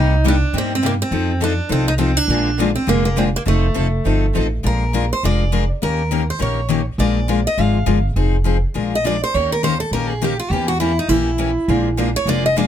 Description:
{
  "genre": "acoustic string swing (jazz manouche)",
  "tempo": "204 BPM",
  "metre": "4/4",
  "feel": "swing 59% on 8ths",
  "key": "Bb mixolydian",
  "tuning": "A4 = 443 Hz",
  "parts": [
    { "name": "picked steel-string acoustic guitar", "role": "melody", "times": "0.0-12.7 s", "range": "A3 to F5", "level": "-21 LUFS", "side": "right 2 dB", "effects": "none" },
    { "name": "picked steel-string acoustic guitar", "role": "accompaniment", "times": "0.0-12.7 s", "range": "C3 to Bb4", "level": "-21 LUFS", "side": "left 7 dB", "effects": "none" },
    { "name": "picked steel-string acoustic guitar", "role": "accompaniment", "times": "0.0-4.5, 11.7-12.7 s", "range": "C3 to A4", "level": "-26 LUFS", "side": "right 8 dB", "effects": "none" },
    { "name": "upright bass", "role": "bass", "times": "0.0-12.7 s", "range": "F1 to G2", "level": "-19 LUFS", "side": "right 1 dB", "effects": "none" }
  ],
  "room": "little or no reverb",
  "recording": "close, detailed microphones",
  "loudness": "-16 LUFS",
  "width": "side -10 dB against mid",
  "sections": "0.0-4.6 A section; 4.6-12.7 B section",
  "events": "steel-string acoustic guitar solo 4.6-12.7",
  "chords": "0.0 Cm7; 1.1 F7; 2.3 Bb7; 3.5 F7; 4.6 Bb7; 5.8 Eb7; 7.0 Bb7; 8.2 Fm7; 8.8 Bb7; 9.3 Eb7; 10.5 Edim7; 11.7 Bb7",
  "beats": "0.24 0.54 0.83 | 1.12 1.42 1.71 2.00 | 2.30 2.59 2.88 3.18 | 3.47 3.77 4.06 4.35 | 4.65 4.94 5.23 5.53 | 5.82 6.11 6.41 6.70 | 6.99 7.29 7.58 7.87 | 8.17 8.46 8.75 9.05 | 9.34 9.63 9.93 10.22 | 10.51 10.81 11.10 11.39 | 11.69 11.98 12.27 12.57"
}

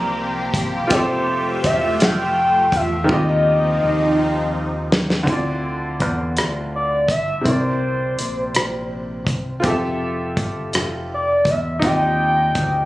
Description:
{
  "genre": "slow six-eight R&B",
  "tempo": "55 BPM (dotted quarters)",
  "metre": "6/8",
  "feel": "straight",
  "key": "unclear",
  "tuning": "A4 = 436 Hz",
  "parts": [
    { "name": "gliding portamento lead", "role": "melody", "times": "0.0-12.9 s", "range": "C5 to Bb5", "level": "-20 LUFS", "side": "left 1 dB", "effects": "chorus, ping-pong delay" },
    { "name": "bright baby grand piano", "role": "accompaniment", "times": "0.0-12.9 s", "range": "C3 to E5", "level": "-23 LUFS", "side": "equal", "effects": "none" },
    { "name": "lush unison pad", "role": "sustained chords", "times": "0.0-5.3 s", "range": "F3 to E5", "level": "-24 LUFS", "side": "right 1 dB", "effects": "chorus, phaser" },
    { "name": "deep dub fingered electric bass", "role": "bass", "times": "0.0-12.9 s", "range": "E1 to E2", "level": "-25 LUFS", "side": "equal", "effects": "none" },
    { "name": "warm soul drum kit", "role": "drums", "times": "0.5-12.7 s", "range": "hi-hat, kick drum, rim click, snare drum", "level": "-21 LUFS", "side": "equal", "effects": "vintage 12-bit sampler grit" }
  ],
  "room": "light reverb, small room ambience",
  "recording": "recorded on a phone in the room, studio reverb, compression",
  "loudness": "-17 LUFS",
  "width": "side -17 dB against mid",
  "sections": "0.0-5.3 A section; 5.3-12.9 B section",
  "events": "drum fill 3.1-5.3",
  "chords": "0.0 C7; 0.9 Fmaj9; 3.1 Eb69; 5.3 Dm9; 7.5 C7; 9.6 Fmaj9; 11.8 Eb69",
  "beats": "| 0.91 2.00 | 3.09 4.18 | 5.27 6.36 | 7.46 8.55 | 9.64 10.73 | 11.82"
}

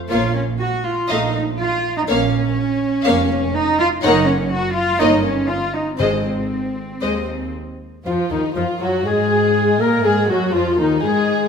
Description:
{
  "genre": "quick classical-period movement for symphony orchestra",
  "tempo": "121 BPM",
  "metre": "4/4",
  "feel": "rubato",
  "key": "Bb minor",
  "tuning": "A4 = 440 Hz",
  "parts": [
    { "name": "warm chamber violin section", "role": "melody", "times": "0.1-11.5 s", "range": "Eb4 to Gb5", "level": "-26 LUFS", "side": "left 3 dB", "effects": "none" },
    { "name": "warm chamber violin section", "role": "second line", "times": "0.1-11.5 s", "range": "Eb4 to Eb5", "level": "-25 LUFS", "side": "left 4 dB", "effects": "none" },
    { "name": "warm chamber viola section", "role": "accompaniment", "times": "0.1-11.5 s", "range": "Eb3 to Bb3", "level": "-23 LUFS", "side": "right 1 dB", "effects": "none" },
    { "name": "dark chamber cello section", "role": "bass", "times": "0.1-11.5 s", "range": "Eb3 to Gb4", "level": "-21 LUFS", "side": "right 1 dB", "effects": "none" },
    { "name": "warm chamber double bass section", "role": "bass", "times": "0.1-11.5 s", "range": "F1 to Bb2", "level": "-25 LUFS", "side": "right 3 dB", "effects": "none" },
    { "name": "timpani", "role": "percussion", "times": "6.0-6.7 s", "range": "Ab2", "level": "-26 LUFS", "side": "left 1 dB", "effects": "none" },
    { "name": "mellow clarinet", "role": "second line", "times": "8.1-11.5 s", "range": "Eb4 to Bb4", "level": "-20 LUFS", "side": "left 1 dB", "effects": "none" },
    { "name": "warm French horn section", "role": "sustained chords", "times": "8.1-11.5 s", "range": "Eb3 to Bb3", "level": "-22 LUFS", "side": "left 6 dB", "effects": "none" }
  ],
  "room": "moderate scoring stage reverb, RT60 1.6 s",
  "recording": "minimal, uncompressed stereo recording",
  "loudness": "-16 LUFS",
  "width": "side -6 dB against mid",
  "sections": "0.0-8.1 A section; 8.1-11.5 B section",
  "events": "none",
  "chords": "0.1 Bbm; 1.1 F7/Bb; 2.1 Bbm; 4.0 Gb; 5.0 Eb7/G; 6.0 Ab; 8.1 Gbmaj13/Eb; 10.0 Ab5",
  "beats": "| 0.11 0.61 1.11 1.60 | 2.09 2.58 3.07 3.55 | 4.04 4.53 5.01 5.50 | 6.00 6.52 7.03 7.55 | 8.07 8.57 9.06 9.56 | 10.05 10.54 11.04"
}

